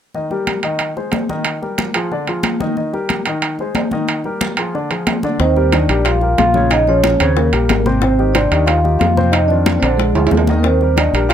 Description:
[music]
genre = Afro-Cuban jazz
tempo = 183 BPM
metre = 4/4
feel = straight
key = Eb major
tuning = A4 = 440 Hz
[part]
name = warm upright piano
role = accompaniment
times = 0.1-11.3 s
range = C3 to Eb5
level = -20 LUFS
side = left 2 dB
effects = none
[part]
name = congas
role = percussion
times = 0.1-11.3 s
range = none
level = -23 LUFS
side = left 2 dB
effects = none
[part]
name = timbales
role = percussion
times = 0.5-11.3 s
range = none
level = -20 LUFS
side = right 6 dB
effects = none
[part]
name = vibraphone with soft mallets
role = melody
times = 5.4-11.3 s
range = Ab4 to F5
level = -18 LUFS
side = equal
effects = none
[part]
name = barky tine electric piano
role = second line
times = 5.4-11.3 s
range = Ab3 to F4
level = -20 LUFS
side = right 4 dB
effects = none
[part]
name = deep dub fingered electric bass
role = bass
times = 5.4-11.3 s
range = Ab1 to F2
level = -16 LUFS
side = equal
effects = none
[part]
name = bongos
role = percussion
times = 5.4-11.3 s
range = none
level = -23 LUFS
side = left 6 dB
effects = none
[sound]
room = little or no reverb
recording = close, detailed microphones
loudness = -13 LUFS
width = side -9 dB against mid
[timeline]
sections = 0.1-5.4 A section; 5.4-11.3 B section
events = drum fill 10.2-10.6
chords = 0.1 Eb; 0.8 Ab; 1.5 Ebadd9; 2.1 Ddim; 2.8 Eb; 3.4 Ab; 4.1 Ebadd9; 4.7 Ddim; 5.4 Ebmaj9; 6.7 Bbm7; 7.4 Eb7; 8.0 Abmaj7; 9.3 F5; 10.0 Bb7; 10.6 Ebmaj7

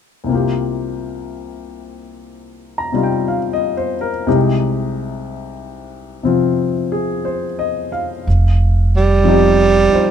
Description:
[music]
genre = jazz ballad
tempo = 60 BPM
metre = 4/4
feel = swing 66% on 8ths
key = F minor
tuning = A4 = 440 Hz
[part]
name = warm baby grand piano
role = accompaniment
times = 0.2-10.1 s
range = C2 to Bb5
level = -18 LUFS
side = left 3 dB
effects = none
[part]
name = upright bass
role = bass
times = 8.3-10.0 s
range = F1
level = -14 LUFS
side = right 1 dB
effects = none
[part]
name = growling tenor saxophone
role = melody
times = 9.0-10.1 s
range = G3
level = -12 LUFS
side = right 5 dB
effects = none
[sound]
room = little or no reverb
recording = close, detailed microphones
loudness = -14 LUFS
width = side -8 dB against mid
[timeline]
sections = 0.3-8.3 A section; 8.3-10.1 B section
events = none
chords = 0.3 C7sus4; 4.3 Fm7/C; 8.3 F7sus2

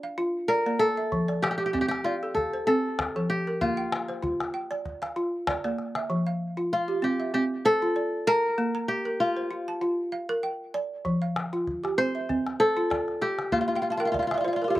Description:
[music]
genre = west african traditional, West African string and xylophone music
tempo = 97 BPM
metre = 4/4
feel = swing 55% on 16ths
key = F major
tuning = A4 = 436 Hz
[part]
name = kora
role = melody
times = 0.0-14.8 s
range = D4 to C5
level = -26 LUFS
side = left 1 dB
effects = none
[part]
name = balafon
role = arpeggios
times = 0.0-14.8 s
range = F3 to Bb5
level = -28 LUFS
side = right 1 dB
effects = none
[part]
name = calabash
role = percussion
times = 1.1-6.1, 11.1-14.8 s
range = none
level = -33 LUFS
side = left 2 dB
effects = none
[sound]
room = little or no reverb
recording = recorded outdoors, with no room sound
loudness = -25 LUFS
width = side -15 dB against mid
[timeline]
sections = 0.0-6.1 A section; 6.1-14.8 B section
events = balafon fill 13.8-14.8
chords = 0.0 Bb; 1.1 F; 3.6 Bb; 6.1 F; 8.6 Bb; 11.1 F; 13.5 Bb

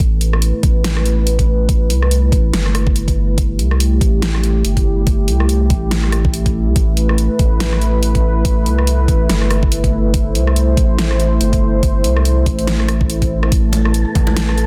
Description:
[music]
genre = deep dubstep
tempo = 142 BPM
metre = 4/4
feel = swing 58% on 16ths, half-time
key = A minor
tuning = A4 = 440 Hz
[part]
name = dark analog pad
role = sustained chords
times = 0.0-14.7 s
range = A3 to C5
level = -22 LUFS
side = equal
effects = chorus
[part]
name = saturated sub bass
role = bass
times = 0.0-14.7 s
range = G1 to C2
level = -18 LUFS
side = equal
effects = none
[part]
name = dubstep drum kit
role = drums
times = 0.0-14.7 s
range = hi-hat, rim click, snare drum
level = -24 LUFS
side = equal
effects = overdrive
[part]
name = electronic kick drum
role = drums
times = 0.0-14.3 s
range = none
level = -18 LUFS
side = equal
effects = overdrive
[part]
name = wind-like tuned noise texture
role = texture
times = 13.7-14.7 s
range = A4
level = -30 LUFS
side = equal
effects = built-in reverb
[part]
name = congas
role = percussion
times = 13.7-14.3 s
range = none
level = -26 LUFS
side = equal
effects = dub echo
[sound]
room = light reverb, digital ambience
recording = dense, heavily limited modern master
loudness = -15 LUFS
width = mono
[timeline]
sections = 0.0-14.7 A section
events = none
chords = 0.0 A5

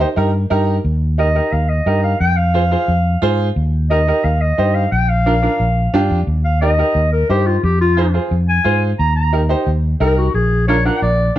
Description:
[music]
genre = latin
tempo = 177 BPM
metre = 4/4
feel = straight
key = Eb major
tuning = A4 = 438 Hz
[part]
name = bright upright piano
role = accompaniment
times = 0.0-11.4 s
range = D4 to C5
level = -19 LUFS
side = right 2 dB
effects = none
[part]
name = fingered electric bass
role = bass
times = 0.0-11.4 s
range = Bb1 to Ab2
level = -16 LUFS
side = equal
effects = none
[part]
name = warm clarinet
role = melody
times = 1.2-11.4 s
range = F4 to Bb5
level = -18 LUFS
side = left 1 dB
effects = plate reverb
[sound]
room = light reverb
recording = dark, warm production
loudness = -13 LUFS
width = side -13 dB against mid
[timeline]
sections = 0.8-11.4 A section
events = upright piano fill 0.3-0.8; clarinet solo 0.8-11.4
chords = 0.0 Eb; 2.2 Fm; 3.6 Eb; 4.9 Bb; 6.3 Eb; 7.6 Fm; 9.0 Eb; 10.3 Bb

